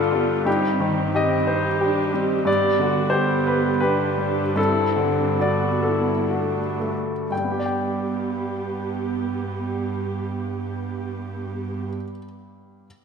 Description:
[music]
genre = classical, romantic movement for piano and orchestra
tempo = 58-93 BPM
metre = 3/4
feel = rubato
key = G major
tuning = A4 = 440 Hz
[part]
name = clear baby grand piano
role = melody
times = 0.0-12.9 s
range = G2 to G5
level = -22 LUFS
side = left 2 dB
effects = none
[part]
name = dark symphonic viola section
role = accompaniment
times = 0.0-11.9 s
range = A3 to G4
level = -26 LUFS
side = right 3 dB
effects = none
[part]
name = rich symphonic cello section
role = bass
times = 0.0-11.9 s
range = G2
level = -30 LUFS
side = right 4 dB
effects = none
[sound]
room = wet scoring stage reverb, RT60 1.5 s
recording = none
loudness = -20 LUFS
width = side -6 dB against mid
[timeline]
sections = 0.0-7.3 A section; 7.3-12.8 B section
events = slowing down 1.5-7.3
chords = 0.5 Cm/G; 2.5 G; 4.6 D7/G; 7.3 G

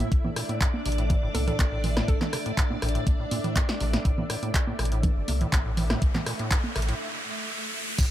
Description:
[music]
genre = acid house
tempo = 122 BPM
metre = 4/4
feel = straight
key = unclear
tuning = A4 = 441 Hz
[part]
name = string machine, full ensemble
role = sustained chords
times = 0.0-8.1 s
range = D4 to E5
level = -36 LUFS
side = equal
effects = ensemble chorus, sidechain pumping
[part]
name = acid bass, square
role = riff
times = 0.0-8.1 s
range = G2 to C3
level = -34 LUFS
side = equal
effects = sidechain pumping
[part]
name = warm sub bass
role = bass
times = 0.0-8.1 s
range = G1 to A2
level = -28 LUFS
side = equal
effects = sidechain pumping
[part]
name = punchy analog drum machine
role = drums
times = 0.0-8.1 s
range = congas, crash cymbal, handclaps, hi-hat, rim click, snare drum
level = -30 LUFS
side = right 1 dB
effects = none
[part]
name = ethereal airy pad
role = texture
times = 0.0-8.1 s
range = A3 to E6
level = -37 LUFS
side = right 1 dB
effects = ensemble chorus, built-in reverb, tremolo, sidechain pumping
[part]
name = electronic kick drum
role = drums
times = 0.1-8.1 s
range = none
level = -24 LUFS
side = equal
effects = none
[part]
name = hollow square pluck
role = melody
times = 1.3-2.6 s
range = A4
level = -38 LUFS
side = right 2 dB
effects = chorus, cassette tape, dub echo
[part]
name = riser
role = sound effects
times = 4.7-8.0 s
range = none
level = -35 LUFS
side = right 1 dB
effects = none
[part]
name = tambourine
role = percussion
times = 8.0-8.1 s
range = none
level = -31 LUFS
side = right 6 dB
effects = none
[sound]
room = light reverb, digital ambience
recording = none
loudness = -24 LUFS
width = side -12 dB against mid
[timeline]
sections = 0.0-8.0 A section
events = filter sweep on acid bass 0.0-8.0; riser 4.7-8.0; break 7.0-8.0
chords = 0.0 A5

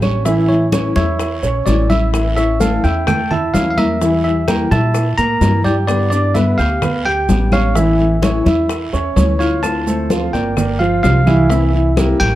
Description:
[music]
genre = latin, Cuban son and guajira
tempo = 128 BPM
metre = 4/4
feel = straight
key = unclear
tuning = A4 = 439 Hz
[part]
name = nylon-string guitar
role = accompaniment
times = 0.0-12.4 s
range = C3 to G4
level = -20 LUFS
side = left 4 dB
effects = none
[part]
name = dark baby grand piano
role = arpeggios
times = 0.0-12.4 s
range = E3 to G6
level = -19 LUFS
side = right 3 dB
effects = none
[part]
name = upright bass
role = bass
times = 0.0-12.4 s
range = G1 to Bb2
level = -18 LUFS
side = equal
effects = none
[part]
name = claves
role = percussion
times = 0.0-12.2 s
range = none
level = -33 LUFS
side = left 4 dB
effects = none
[part]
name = congas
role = percussion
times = 0.0-12.4 s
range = none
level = -21 LUFS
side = left 1 dB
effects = none
[part]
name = guiro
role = percussion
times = 0.0-12.4 s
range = none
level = -33 LUFS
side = right 4 dB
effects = none
[part]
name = maracas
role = percussion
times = 0.0-12.4 s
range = none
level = -34 LUFS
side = right 7 dB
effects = none
[part]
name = bell-like tine electric piano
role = melody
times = 0.3-12.4 s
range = C#5 to Bb5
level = -21 LUFS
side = equal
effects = plate reverb
[part]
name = bongos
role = percussion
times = 0.3-12.4 s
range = none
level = -26 LUFS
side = left 5 dB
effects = none
[sound]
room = moderate large studio reverb, RT60 0.9 s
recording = dark, warm production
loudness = -13 LUFS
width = side -14 dB against mid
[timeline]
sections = 0.0-9.6 A section; 9.6-12.4 B section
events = none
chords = 0.3 A; 4.0 Edim; 5.9 G; 7.8 A; 9.6 Dm7; 10.6 Gm7; 11.5 C7

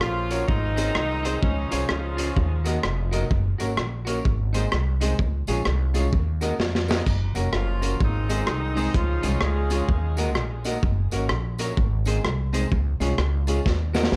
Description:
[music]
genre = ska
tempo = 128 BPM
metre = 4/4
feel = swing 62% on 8ths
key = Db major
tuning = A4 = 440 Hz
[part]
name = warm horn section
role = melody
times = 0.0-2.6, 7.5-10.2 s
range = Db3 to Ab4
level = -32 LUFS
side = equal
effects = tape echo
[part]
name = upright bass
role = bass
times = 0.0-14.2 s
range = F1 to F2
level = -27 LUFS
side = equal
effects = none
[part]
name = crunchy breakbeat drum kit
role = drums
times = 0.0-14.2 s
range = hi-hat, kick drum, rim click, snare drum, splash cymbal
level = -29 LUFS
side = equal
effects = none
[part]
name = semi-hollow electric guitar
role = accompaniment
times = 0.3-14.2 s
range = Eb4 to Eb5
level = -36 LUFS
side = equal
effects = none
[part]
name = warm upright piano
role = stabs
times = 0.3-14.1 s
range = Ab3 to Db5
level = -34 LUFS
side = equal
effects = tape echo
[part]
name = tambourine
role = percussion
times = 0.3-14.0 s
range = none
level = -48 LUFS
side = equal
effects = tape echo
[sound]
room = light reverb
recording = none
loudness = -24 LUFS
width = mono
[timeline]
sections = 0.0-14.2 A section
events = drum fill 6.6-7.1, 13.7-14.2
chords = 0.5 Ab; 1.4 Db; 2.4 Ebm; 3.3 Gb; 4.2 Ab; 5.2 Db; 6.1 Ebm; 7.1 Gb; 8.0 Ab; 8.9 Db; 9.9 Ebm; 10.8 Gb; 11.8 Ab; 12.7 Db; 13.7 Ebm

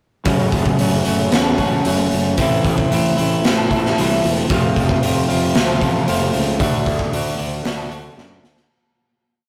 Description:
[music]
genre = quiet-loud alternative rock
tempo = 114 BPM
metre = 4/4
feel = straight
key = unclear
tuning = A4 = 444 Hz
[part]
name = electric guitar at the edge of break-up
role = arpeggios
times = 0.2-8.7 s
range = F2 to F#4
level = -21 LUFS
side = equal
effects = none
[part]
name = fuzz fingered electric bass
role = bass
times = 0.3-8.6 s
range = E1 to F#2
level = -24 LUFS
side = equal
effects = overdrive
[part]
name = raw garage drum kit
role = drums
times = 0.3-8.7 s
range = hi-hat, kick drum, snare drum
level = -22 LUFS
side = equal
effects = none
[sound]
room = light reverb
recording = rough rehearsal-room recording, warm saturation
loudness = -17 LUFS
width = mono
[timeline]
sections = 0.3-8.7 verse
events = fade-out 6.6-8.7; drum fill 8.2-8.7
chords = 0.3 F#m; 2.4 Am; 4.5 F; 6.6 D

